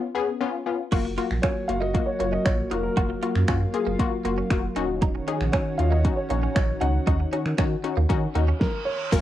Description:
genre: dance-pop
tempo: 117 BPM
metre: 4/4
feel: straight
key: F# major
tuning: A4 = 439 Hz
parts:
  - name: wide unison pluck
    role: accompaniment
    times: 0.0-9.2 s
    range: A#3 to A#4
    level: -28 LUFS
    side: left 7 dB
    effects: sidechain pumping
  - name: lush unison pad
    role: sustained chords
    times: 0.9-9.2 s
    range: D#3 to F#4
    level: -32 LUFS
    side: right 1 dB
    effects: chorus, sidechain pumping
  - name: direct-recorded clean electric guitar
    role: riff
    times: 0.9-9.2 s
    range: A#3 to F#4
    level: -33 LUFS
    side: right 10 dB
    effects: analog chorus
  - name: warm sub bass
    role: bass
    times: 0.9-9.2 s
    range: D#1 to D#3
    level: -25 LUFS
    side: right 1 dB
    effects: sidechain pumping
  - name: pop drum kit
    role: drums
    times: 0.9-9.2 s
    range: crash cymbal, finger snaps, hi-hat, kick drum, shaker, snare drum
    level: -25 LUFS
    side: right 1 dB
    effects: overdrive, cassette tape
  - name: dark baby grand piano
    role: melody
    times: 1.4-9.2 s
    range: A#4 to F#5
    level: -30 LUFS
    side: right 1 dB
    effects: cassette tape
  - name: reverse cymbal and downlifter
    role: sound effects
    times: 8.4-9.2 s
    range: none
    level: -35 LUFS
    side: right 5 dB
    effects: none
  - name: egg shaker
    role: percussion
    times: 9.1-9.2 s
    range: none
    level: -41 LUFS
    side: right 15 dB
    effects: none
room: moderate studio reverb, RT60 0.6 s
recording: home recording on cassette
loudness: -22 LUFS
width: side -12 dB against mid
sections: 0.9-9.1 A section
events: break 0.0-0.9; reverse cymbal 8.4-9.1; stop 8.6-9.1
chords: 0.0 C#7; 0.9 F#maj7; 4.8 D#m7

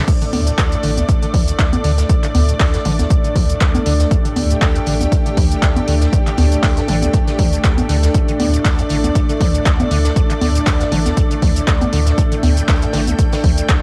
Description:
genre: acid house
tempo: 119 BPM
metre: 4/4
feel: swing 55% on 16ths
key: unclear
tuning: A4 = 443 Hz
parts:
  - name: lush unison pad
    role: sustained chords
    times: 0.0-13.8 s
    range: A2 to G5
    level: -26 LUFS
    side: equal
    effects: chorus, sidechain pumping, cassette tape
  - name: acid bass, square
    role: riff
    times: 0.0-13.8 s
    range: D1 to D3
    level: -24 LUFS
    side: equal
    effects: overdrive, analog chorus, sidechain pumping, cassette tape
  - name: warbly tape-like pad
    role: texture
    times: 0.0-13.8 s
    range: D4 to D5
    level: -27 LUFS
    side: equal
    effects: chorus, built-in reverb, sidechain pumping, cassette tape
  - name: compact cocktail drum kit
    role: drums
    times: 0.1-13.8 s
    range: hi-hat, snare drum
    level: -34 LUFS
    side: equal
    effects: none
  - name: electronic kick drum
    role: drums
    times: 0.1-13.8 s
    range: none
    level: -17 LUFS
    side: equal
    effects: overdrive, cassette tape
  - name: punchy analog drum machine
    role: drums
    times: 0.1-13.8 s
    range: congas, crash cymbal, handclaps, hi-hat, shaker, toms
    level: -24 LUFS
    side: equal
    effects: overdrive, cassette tape
  - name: saturated sub bass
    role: bass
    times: 0.3-13.6 s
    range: A1 to D2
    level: -20 LUFS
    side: equal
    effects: tube saturation, sidechain pumping
room: light reverb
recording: home recording on cassette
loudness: -15 LUFS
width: mono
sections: 0.1-13.8 A section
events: drop 0.1-13.8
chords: 0.1 D5

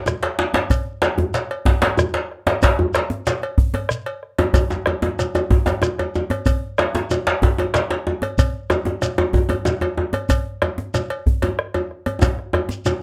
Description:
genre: west african traditional, West African drum ensemble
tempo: 125 BPM (dotted quarters)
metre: 12/8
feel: straight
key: none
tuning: none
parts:
  - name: bombo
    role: percussion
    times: 0.1-12.7 s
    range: none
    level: -22 LUFS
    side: equal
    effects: none
  - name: djembe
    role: percussion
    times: 0.1-13.0 s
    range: none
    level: -23 LUFS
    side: equal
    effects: none
  - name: shekere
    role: percussion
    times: 0.1-13.0 s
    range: none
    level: -29 LUFS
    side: equal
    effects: none
  - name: cowbell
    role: percussion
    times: 0.2-13.0 s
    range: none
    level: -29 LUFS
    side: equal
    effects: none
  - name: djembe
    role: percussion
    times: 0.5-13.0 s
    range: none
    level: -26 LUFS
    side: equal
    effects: none
room: light reverb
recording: close, detailed microphones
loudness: -21 LUFS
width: mono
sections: 0.0-13.0 A section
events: drum fill 12.2-13.0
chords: none

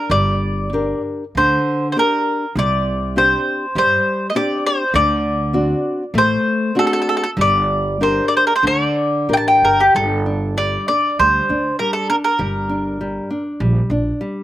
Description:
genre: fado-style ballad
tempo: 87-102 BPM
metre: 4/4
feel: rubato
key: G harmonic minor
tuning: A4 = 439 Hz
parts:
  - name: mandolin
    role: melody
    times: 0.0-13.4 s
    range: G4 to A5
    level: -16 LUFS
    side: equal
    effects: slapback echo
  - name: nylon-string guitar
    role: accompaniment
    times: 0.0-14.4 s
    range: C3 to Bb4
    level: -21 LUFS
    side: left 1 dB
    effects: none
  - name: upright bass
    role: bass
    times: 0.1-14.1 s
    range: G1 to G2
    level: -22 LUFS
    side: right 1 dB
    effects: none
room: little or no reverb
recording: recorded outdoors, with no room sound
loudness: -15 LUFS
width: side -13 dB against mid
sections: 0.1-9.9 A section; 9.9-14.4 B section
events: none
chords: 0.1 Gm; 2.6 Csus2; 4.9 D7; 7.4 Gm; 9.9 Gsus2; 12.4 Gm

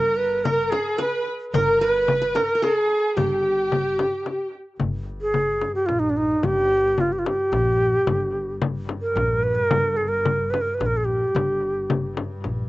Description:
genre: Arabic maqam ensemble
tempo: 110 BPM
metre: 3/4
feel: straight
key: G maqam saba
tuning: A4 = 436 Hz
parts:
  - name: bright reedy ney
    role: melody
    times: 0.0-12.1 s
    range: D4 to B4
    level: -21 LUFS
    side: right 1 dB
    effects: slapback echo
  - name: qanun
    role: second line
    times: 0.0-4.5 s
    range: G4 to B4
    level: -29 LUFS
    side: right 1 dB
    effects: slapback echo
  - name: rich symphonic violin section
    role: second line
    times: 0.0-4.5 s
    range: G4 to B4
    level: -28 LUFS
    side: left 2 dB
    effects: slapback echo
  - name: upright bass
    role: bass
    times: 0.0-12.7 s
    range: G1 to Bb1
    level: -29 LUFS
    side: left 1 dB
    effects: none
  - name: frame drum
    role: percussion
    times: 0.5-12.6 s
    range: none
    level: -27 LUFS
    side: left 4 dB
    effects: none
  - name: rich double bass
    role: drone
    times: 4.8-12.7 s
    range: G2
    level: -34 LUFS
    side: equal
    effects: stereo widening
room: little or no reverb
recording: recorded outdoors, with no room sound, nothing above 8.0 kHz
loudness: -20 LUFS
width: side -18 dB against mid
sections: 0.0-4.8 A section; 4.8-12.7 B section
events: none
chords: none

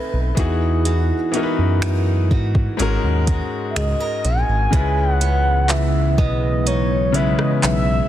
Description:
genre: contemporary R&B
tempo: 62 BPM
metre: 4/4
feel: straight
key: C# dorian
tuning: A4 = 440 Hz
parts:
  - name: mellow horn-like synth lead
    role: melody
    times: 0.0-8.1 s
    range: B4 to G#5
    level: -23 LUFS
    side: equal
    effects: chorus, ping-pong delay
  - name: clear grand piano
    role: accompaniment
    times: 0.0-8.1 s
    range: G#2 to B4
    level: -24 LUFS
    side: left 4 dB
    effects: none
  - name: picked old ladder-braced acoustic guitar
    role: arpeggios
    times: 0.0-8.1 s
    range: B2 to A#4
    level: -27 LUFS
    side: right 5 dB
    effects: ping-pong delay
  - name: smooth gliding synth bass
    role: bass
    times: 0.1-8.0 s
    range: G#1 to G#2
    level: -19 LUFS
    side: equal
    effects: none
  - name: smooth R&B drum kit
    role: drums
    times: 0.4-7.9 s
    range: finger snaps, handclaps, hi-hat, kick drum, rim click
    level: -22 LUFS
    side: equal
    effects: overdrive, vintage 12-bit sampler grit, soft clipping on snare
  - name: ethereal airy pad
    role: sustained chords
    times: 5.3-8.1 s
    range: C#3 to B3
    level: -25 LUFS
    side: left 1 dB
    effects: ensemble chorus, built-in reverb, sidechain pumping
room: digital ambience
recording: dense, heavily limited modern master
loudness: -16 LUFS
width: side -12 dB against mid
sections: 0.0-4.7 A section; 4.7-8.1 B section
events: none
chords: 0.4 Emaj9; 2.8 G#9sus4; 4.7 C#m9

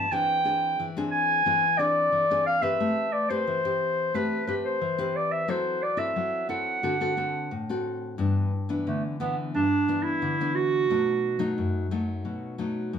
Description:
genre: samba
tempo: 89 BPM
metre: 4/4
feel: straight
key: E minor, G major from 8.2 s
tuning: A4 = 440 Hz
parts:
  - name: clear clarinet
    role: melody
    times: 0.0-11.6 s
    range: A3 to A5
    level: -24 LUFS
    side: right 1 dB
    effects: none
  - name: nylon-string guitar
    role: accompaniment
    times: 0.0-13.0 s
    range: F#2 to B4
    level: -29 LUFS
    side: left 2 dB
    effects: none
room: wet studio reverb, RT60 0.5 s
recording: heard from further back in the room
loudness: -24 LUFS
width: side -8 dB against mid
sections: 0.0-8.2 A section; 8.2-13.0 B section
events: none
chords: 0.1 E7alt; 2.8 Am9; 5.5 F#m7b5; 6.8 D7; 8.2 G6; 10.9 B7

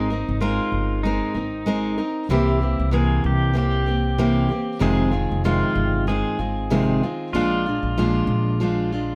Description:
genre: acoustic pop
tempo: 95 BPM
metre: 4/4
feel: swing 60% on 16ths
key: Ab lydian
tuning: A4 = 441 Hz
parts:
  - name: pedal steel guitar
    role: second line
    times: 0.0-9.2 s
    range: Eb4 to Ab4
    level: -31 LUFS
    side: equal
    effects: none
  - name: picked steel-string acoustic guitar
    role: accompaniment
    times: 0.0-9.2 s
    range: F2 to Bb4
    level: -24 LUFS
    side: equal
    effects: none
  - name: upright bass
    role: bass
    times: 0.0-9.2 s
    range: F1 to C2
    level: -26 LUFS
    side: equal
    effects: none
room: light reverb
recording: none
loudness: -22 LUFS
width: mono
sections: 0.0-9.2 A section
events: none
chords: 0.0 Abadd9; 2.3 C7; 4.8 Fm7; 7.3 Bb7

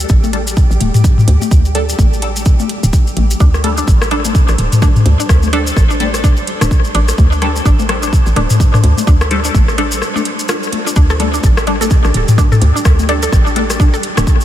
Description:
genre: minimal techno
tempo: 127 BPM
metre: 4/4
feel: swing 59% on 16ths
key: unclear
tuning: A4 = 440 Hz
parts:
  - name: hollow knocking FM bass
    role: bass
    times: 0.0-14.2 s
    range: D1 to D2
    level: -15 LUFS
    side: equal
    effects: sidechain pumping
  - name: flickering grainy texture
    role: texture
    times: 0.0-14.4 s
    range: G3 to C5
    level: -26 LUFS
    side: right 2 dB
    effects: built-in reverb, lush chorus, sidechain pumping
  - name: warbly tape-like pad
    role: texture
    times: 1.7-14.4 s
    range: D4 to A5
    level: -32 LUFS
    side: equal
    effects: none
  - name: electronic kick drum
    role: drums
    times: 0.1-14.4 s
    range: none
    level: -10 LUFS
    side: equal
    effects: studio reverb
  - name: maracas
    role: percussion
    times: 0.1-14.4 s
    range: none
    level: -25 LUFS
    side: left 2 dB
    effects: none
  - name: minimal click drum kit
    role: percussion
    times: 0.2-14.3 s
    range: rim click, toms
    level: -17 LUFS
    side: left 3 dB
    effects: overdrive, studio reverb, ping-pong delay
  - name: filtered dub chord stab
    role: stabs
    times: 0.3-13.6 s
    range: G3 to A4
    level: -23 LUFS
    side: left 2 dB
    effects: phaser, lush chorus, ping-pong delay
  - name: electronic hi-hat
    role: drums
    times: 0.3-14.2 s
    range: none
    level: -25 LUFS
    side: right 3 dB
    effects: overdrive, studio reverb
  - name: mallet-like synth pluck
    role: riff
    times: 3.4-14.2 s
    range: D4 to A4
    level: -20 LUFS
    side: right 1 dB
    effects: chorus, phaser, sidechain pumping, tape echo
room: light reverb, digital ambience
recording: none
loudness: -10 LUFS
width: side -12 dB against mid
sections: 0.0-14.4 A section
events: break 10.0-11.0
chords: 0.0 Dsus4

